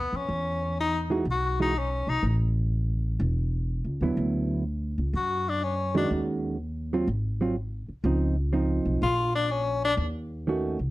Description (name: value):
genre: jazz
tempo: 124 BPM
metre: 4/4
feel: swing 68% on 8ths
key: unclear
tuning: A4 = 443 Hz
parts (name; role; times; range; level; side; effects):
- bright tenor saxophone; melody; 0.0-2.2, 5.2-6.1, 9.0-9.9 s; B3 to F#4; -27 LUFS; left 3 dB; slapback echo
- upright bass; bass; 0.0-10.9 s; E1 to F#2; -28 LUFS; equal; none
- hollow-body jazz guitar; accompaniment; 1.1-10.8 s; D3 to F#4; -26 LUFS; right 2 dB; none
room: little or no reverb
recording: dry, close 1970s-style studio recording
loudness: -25 LUFS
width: side -18 dB against mid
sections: 0.0-10.9 A section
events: none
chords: 0.3 Emaj9; 2.2 A5; 4.2 D69; 6.1 D#m11; 7.1 G#6; 8.0 C#maj9; 9.0 A#; 10.0 D#m7b5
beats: | 0.28 0.77 1.25 1.74 | 2.22 2.71 3.19 3.68 | 4.17 4.65 5.13 5.62 | 6.10 6.59 7.07 7.56 | 8.04 8.53 9.01 9.50 | 9.98 10.47